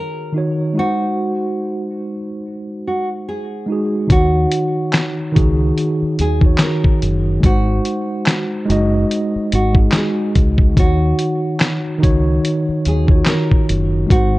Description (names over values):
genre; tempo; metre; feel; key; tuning
lo-fi hip hop; 72 BPM; 4/4; swing 58% on 16ths; Eb dorian; A4 = 439 Hz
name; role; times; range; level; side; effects
nylon-string guitar; melody; 0.0-14.4 s; Gb4 to Bb4; -23 LUFS; right 1 dB; analog delay
mellow tine electric piano; accompaniment; 0.0-14.4 s; Eb3 to Eb5; -19 LUFS; equal; medium stereo tremolo, cassette tape
deep dub fingered electric bass; bass; 4.1-14.4 s; Gb1 to Eb2; -17 LUFS; equal; none
dusty soul sampler-style drum kit; drums; 4.1-14.3 s; handclaps, hi-hat, kick drum, snare drum; -15 LUFS; equal; vintage 12-bit sampler grit
room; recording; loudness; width
light reverb; cassette tape; -14 LUFS; side -19 dB against mid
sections
0.0-4.1 A section; 4.1-14.4 B section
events
none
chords
0.0 Ebm7; 0.8 Ab7; 4.1 Ebm7; 7.4 Ab7; 10.8 Ebm7